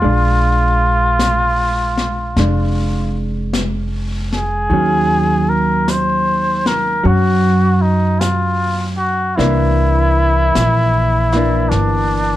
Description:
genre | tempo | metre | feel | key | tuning
jazz ballad | 51 BPM | 4/4 | swing 68% on 8ths | unclear | A4 = 443 Hz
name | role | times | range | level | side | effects
trumpet with cup mute | melody | 0.0-12.4 s | D4 to C5 | -17 LUFS | equal | none
vintage hollow-body jazz guitar | accompaniment | 0.0-12.4 s | Eb3 to D4 | -19 LUFS | right 1 dB | none
upright bass | bass | 0.0-12.4 s | F1 to Gb2 | -17 LUFS | equal | none
jazz brush drum kit | drums | 0.0-12.4 s | brushed snare drum, hi-hat, snare drum | -26 LUFS | left 2 dB | none
room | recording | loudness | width
little or no reverb | dark, warm production | -13 LUFS | side -14 dB against mid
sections
0.0-12.4 A section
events
none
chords
0.0 Bb7; 4.7 Ebm7; 9.4 C9

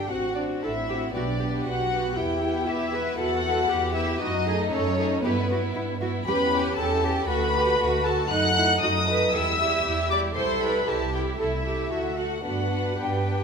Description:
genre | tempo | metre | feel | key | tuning
quick classical-period movement for string orchestra | 117 BPM | 4/4 | rubato | unclear | A4 = 440 Hz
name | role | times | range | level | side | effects
warm chamber violin section | melody | 0.0-13.4 s | B4 to F#6 | -28 LUFS | left 5 dB | none
warm chamber violin section | second line | 0.0-13.4 s | G3 to G4 | -30 LUFS | left 2 dB | none
dark chamber viola section | accompaniment | 0.0-13.4 s | B3 to F#5 | -28 LUFS | right 2 dB | none
clear chamber double bass section | bass | 0.0-13.4 s | A1 to G2 | -30 LUFS | right 3 dB | none
warm chamber cello section | bass | 0.0-13.4 s | D4 to B4 | -31 LUFS | right 2 dB | none
room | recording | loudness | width
wet recital hall reverb, RT60 1.7 s | none | -22 LUFS | side -6 dB against mid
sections
0.0-13.4 A section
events
none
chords
0.1 F#dim/A; 1.1 G/B; 2.2 Em; 4.2 D#dim/F#; 5.2 Em/G; 6.3 A7/E; 7.3 D; 8.3 B7/F#; 9.3 Em; 10.4 C; 11.9 D; 12.5 G

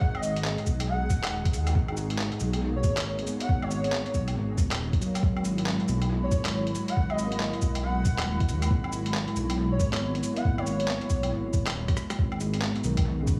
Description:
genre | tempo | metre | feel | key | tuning
future garage | 138 BPM | 4/4 | swing 62% on 16ths | G# minor | A4 = 443 Hz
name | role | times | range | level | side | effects
airy dreamy lead | melody | 0.0-11.2 s | C#5 to F#5 | -36 LUFS | equal | chorus, cassette tape, tape echo
barky tine electric piano | accompaniment | 0.0-13.4 s | C#3 to D#5 | -36 LUFS | equal | vintage 12-bit sampler grit, sidechain pumping, dub echo
airy breathy pad | sustained chords | 0.0-13.4 s | G#3 to B5 | -38 LUFS | equal | chorus, sidechain pumping
dark detuned saw bass | bass | 0.0-13.4 s | D#1 to D#2 | -32 LUFS | equal | sidechain pumping
electronic kick drum | drums | 0.0-13.4 s | none | -28 LUFS | equal | studio reverb
lo-fi sampler-style drum kit | drums | 0.1-13.4 s | cabasa, handclaps, hi-hat, rim click, woodblock | -37 LUFS | equal | studio reverb, dub echo
backwards swelling texture | texture | 12.7-13.4 s | B3 to B4 | -49 LUFS | equal | none
room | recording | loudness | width
light reverb | echo-heavy mix, small room ambience | -27 LUFS | mono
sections
0.0-12.2 A section; 12.2-13.4 A section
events
drum fill 11.9-12.2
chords
0.0 G#m7; 5.2 Esus2; 12.2 G#m7

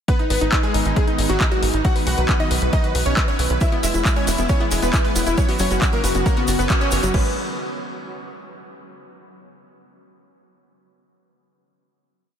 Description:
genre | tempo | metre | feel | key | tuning
uplifting trance | 136 BPM | 4/4 | straight | G# minor | A4 = 442 Hz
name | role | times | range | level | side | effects
supersaw stab | melody | 0.1-7.3 s | F#3 to F#5 | -25 LUFS | equal | sidechain pumping, tape echo
warm grand piano | second line | 0.1-7.3 s | D#4 to F#5 | -29 LUFS | equal | sidechain pumping, tape echo
analog string pad | sustained chords | 0.1-7.3 s | C#3 to B3 | -28 LUFS | right 2 dB | ensemble chorus, sidechain pumping
electronic kick drum | drums | 0.1-7.2 s | none | -20 LUFS | equal | overdrive
punchy analog drum machine | drums | 0.1-7.2 s | crash cymbal, handclaps, hi-hat | -26 LUFS | left 1 dB | overdrive
tight sequencer bass | bass | 0.3-7.3 s | E1 to B1 | -22 LUFS | equal | sidechain pumping
analog pluck | arpeggios | 3.6-7.3 s | F#3 to G#5 | -28 LUFS | left 2 dB | chorus, sidechain pumping, tape echo
tube shaker | percussion | 3.6-7.1 s | none | -31 LUFS | right 4 dB | none
room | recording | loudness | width
moderate cathedral reverb, RT60 5.2 s | dreamy mix soaked in reverb | -17 LUFS | side -8 dB against mid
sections
0.1-7.1 drop; 7.1-8.9 final chord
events
drop 0.1-7.1; band accent 6.7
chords
0.1 G#m; 1.8 B; 3.6 E; 5.4 F#sus4; 7.1 G#m

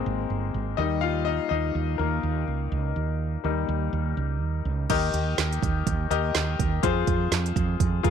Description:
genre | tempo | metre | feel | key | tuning
piano-driven pop | 124 BPM | 4/4 | swing 56% on 16ths | unclear | A4 = 440 Hz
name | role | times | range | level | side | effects
bright grand piano | accompaniment | 0.0-8.1 s | Eb3 to F5 | -28 LUFS | left 11 dB | none
woody fretless electric bass | bass | 0.1-8.1 s | G1 to F2 | -27 LUFS | right 2 dB | none
deep house drum kit | drums | 4.9-8.1 s | crash cymbal, handclaps, hi-hat, kick drum, snare drum | -27 LUFS | right 6 dB | none
room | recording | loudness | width
light reverb | 1960s-style stereo with parts hard left and right | -24 LUFS | side -8 dB against mid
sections
0.0-4.9 A section; 4.9-8.1 B section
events
grand piano solo 0.0-4.9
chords
0.0 Abadd9; 0.8 Eb; 6.8 Fm

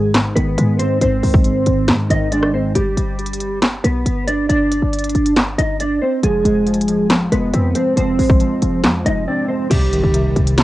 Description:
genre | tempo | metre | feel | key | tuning
hip hop, trap | 138 BPM | 4/4 | half-time | unclear | A4 = 440 Hz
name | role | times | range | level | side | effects
mellow electric guitar | melody | 0.0-10.5 s | G3 to Eb5 | -18 LUFS | right 1 dB | analog chorus, cassette tape, analog delay
warbly lo-fi synth keys | accompaniment | 0.0-2.8, 6.2-10.6 s | Ab2 to C4 | -20 LUFS | equal | chorus, cassette tape
short 808-style bass | bass | 0.0-10.6 s | F1 to Ab2 | -20 LUFS | equal | none
trap drum kit | drums | 0.1-10.6 s | crash cymbal, handclaps, hi-hat, kick drum, rim click, snare drum | -17 LUFS | equal | overdrive, cassette tape
impact | sound effects | 9.7-10.6 s | none | -24 LUFS | left 1 dB | none
room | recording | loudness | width
digital ambience | home recording on cassette, nothing above 11.0 kHz | -14 LUFS | side -16 dB against mid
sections
0.0-9.7 A section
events
break 2.8-6.2, 9.3-9.7; impact 9.7-10.6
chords
0.0 Ab; 2.8 G; 6.2 Fm; 9.7 Cm

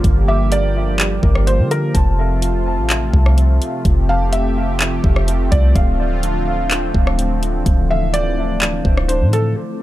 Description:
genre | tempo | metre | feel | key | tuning
hip hop, atmospheric cloud-rap | 126 BPM | 4/4 | half-time | unclear | A4 = 440 Hz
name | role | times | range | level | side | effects
warm analog pad | sustained chords | 0.0-9.8 s | C3 to A4 | -23 LUFS | left 1 dB | chorus, sidechain pumping, low-pass filter
mellow electric guitar | arpeggios | 0.0-9.8 s | D4 to D6 | -26 LUFS | right 2 dB | low-pass filter, dub echo
soft 808-style bass | bass | 0.0-9.5 s | D1 to D3 | -17 LUFS | equal | none
smooth R&B drum kit | drums | 0.0-9.4 s | handclaps, hi-hat, kick drum, rim click | -17 LUFS | equal | none
felt-muted upright piano | melody | 0.3-9.6 s | A4 to F5 | -24 LUFS | right 1 dB | low-pass filter, dub echo
room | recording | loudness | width
digital ambience | echo-heavy mix | -14 LUFS | side -15 dB against mid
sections
0.0-9.6 A section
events
none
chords
0.0 Gm7; 1.9 Fmaj7; 5.8 Dm7

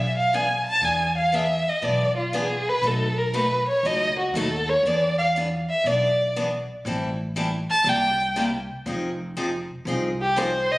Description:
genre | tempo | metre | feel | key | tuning
acoustic string swing (jazz manouche) | 120 BPM | 4/4 | swing 66% on 8ths | unclear | A4 = 440 Hz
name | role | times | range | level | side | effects
warm violin | melody | 0.0-10.8 s | F4 to A5 | -22 LUFS | equal | tape echo
picked steel-string acoustic guitar | accompaniment | 0.0-10.5 s | B2 to A4 | -28 LUFS | left 1 dB | none
upright bass | bass | 0.0-10.7 s | F1 to E2 | -29 LUFS | equal | none
room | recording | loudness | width
moderate studio reverb, RT60 0.5 s | recorded on a phone in the room, studio reverb | -21 LUFS | side -20 dB against mid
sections
0.0-8.9 A section; 8.9-10.8 A section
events
violin solo 0.0-10.8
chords
0.0 E7; 2.8 B7; 4.8 E7; 6.9 Am7; 7.9 C7; 8.9 Fm7

